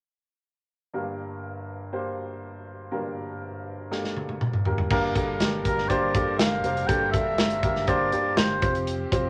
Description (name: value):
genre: piano-driven pop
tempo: 121 BPM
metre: 4/4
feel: straight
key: G minor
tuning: A4 = 444 Hz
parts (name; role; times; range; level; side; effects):
- warm upright piano; accompaniment; 0.9-9.3 s; G1 to C5; -31 LUFS; equal; none
- modern studio drum kit; drums; 3.9-9.2 s; crash cymbal, hi-hat, kick drum, snare drum, toms; -28 LUFS; equal; none
- warm studio string section; sustained chords; 4.9-9.3 s; F3 to Bb4; -41 LUFS; equal; none
- fingered electric bass; bass; 4.9-9.3 s; F1 to G2; -38 LUFS; equal; none
- breathy oboe; melody; 5.6-8.7 s; Bb4 to G5; -29 LUFS; equal; none
room: wet small room reverb, RT60 0.6 s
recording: none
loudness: -26 LUFS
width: mono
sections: 0.9-4.9 A section; 4.9-9.3 B section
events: drum fill 3.9-4.9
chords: 0.9 Gm; 8.6 Fsus2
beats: | 0.94 1.43 1.93 2.43 | 2.92 3.42 3.91 4.41 | 4.91 5.40 5.90 6.39 | 6.89 7.38 7.88 8.38 | 8.87